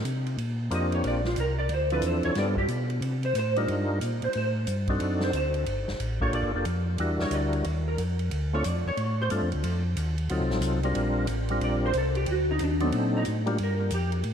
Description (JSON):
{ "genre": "soul jazz organ trio", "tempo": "182 BPM", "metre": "4/4", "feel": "swing 64% on 8ths", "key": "Bb major", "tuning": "A4 = 441 Hz", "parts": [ { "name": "mellow tonewheel organ", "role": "bass", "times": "0.0-14.3 s", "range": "F1 to C3", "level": "-28 LUFS", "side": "equal", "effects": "chorus vibrato, slow rotary speaker" }, { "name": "vintage drum kit", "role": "drums", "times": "0.1-14.3 s", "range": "hi-hat, kick drum, ride cymbal, snare drum", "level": "-38 LUFS", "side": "right 1 dB", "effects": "none" }, { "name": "percussive tonewheel organ", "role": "melody", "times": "0.7-13.6 s", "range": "F3 to Bb4", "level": "-30 LUFS", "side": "left 1 dB", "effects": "overdrive, chorus vibrato, slow rotary speaker, tape echo" }, { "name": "vintage hollow-body jazz guitar", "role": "accompaniment", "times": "0.7-9.3, 11.6-14.1 s", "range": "Cb4 to Eb5", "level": "-31 LUFS", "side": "right 1 dB", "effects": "ensemble chorus" } ], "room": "moderate lush hall reverb, RT60 1.9 s, studio reverb", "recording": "dreamy mix soaked in reverb", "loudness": "-25 LUFS", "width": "side -8 dB against mid", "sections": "0.4-11.0 A section; 11.0-14.3 A section", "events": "hollow-body jazz guitar solo 0.0-11.0, 11.0-14.3", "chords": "0.4 Bb69; 1.7 Dm9; 2.4 G7; 3.0 Cm11; 4.3 Am7b5; 5.0 D7b9; 5.7 Gm9; 7.0 Em7b5; 7.6 Ebsus2; 8.3 Dm7; 9.6 F7b9; 11.0 Bb6; 12.3 D7b9; 13.6 Gm9" }